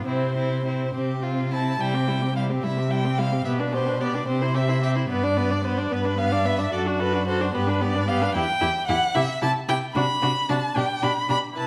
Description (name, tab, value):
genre	quick classical-period movement for string quartet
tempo	73 BPM (dotted quarters)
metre	6/8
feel	rubato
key	C major, G major from 8.4 s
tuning	A4 = 438 Hz
part	warm violin	second line	0.0-11.7 s	E4 to D5	-34 LUFS	equal	none
part	warm viola	accompaniment	0.0-11.7 s	G3 to F#4	-30 LUFS	equal	none
part	warm violin	melody	0.1-11.7 s	B4 to B5	-29 LUFS	equal	none
part	warm cello	bass	0.1-11.7 s	E2 to C3	-28 LUFS	equal	none
room	moderate recital hall reverb, RT60 1.4 s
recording	none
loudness	-24 LUFS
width	mono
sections	0.0-1.8 A section; 1.8-11.7 A section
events	none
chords	0.1 C; 3.5 G/B; 4.3 C; 5.1 G; 6.7 D/F#; 7.5 G; 8.4 Em; 9.2 C; 10.0 D7; 10.8 G/B